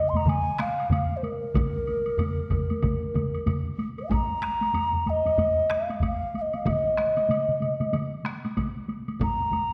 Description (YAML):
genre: japanese traditional, taiko drum ensemble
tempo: 94 BPM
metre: 4/4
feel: swing 60% on 16ths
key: Bb suspended pentatonic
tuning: A4 = 441 Hz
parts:
  - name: mellow hollow alto ocarina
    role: melody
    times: 0.0-9.7 s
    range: Bb4 to C6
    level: -28 LUFS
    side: equal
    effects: none
  - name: taiko ensemble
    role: percussion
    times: 0.1-9.7 s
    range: none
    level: -35 LUFS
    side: equal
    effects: none
  - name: taiko ensemble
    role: percussion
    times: 0.1-9.7 s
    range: none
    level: -32 LUFS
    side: equal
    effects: none
  - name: taiko ensemble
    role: percussion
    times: 0.1-8.8 s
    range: none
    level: -33 LUFS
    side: equal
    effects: none
  - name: woodblock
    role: percussion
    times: 0.2-9.7 s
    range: none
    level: -45 LUFS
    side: equal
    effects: none
  - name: taiko ensemble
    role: percussion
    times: 1.6-9.4 s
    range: none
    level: -34 LUFS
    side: equal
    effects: none
room: wet scoring stage reverb, RT60 1.6 s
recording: dark, warm production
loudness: -26 LUFS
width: mono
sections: 0.0-4.1 A section; 4.1-9.7 B section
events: none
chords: none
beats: 0.28 0.92 | 1.56 2.20 2.84 3.48 | 4.11 4.75 5.39 6.03 | 6.66 7.30 7.94 8.57 | 9.21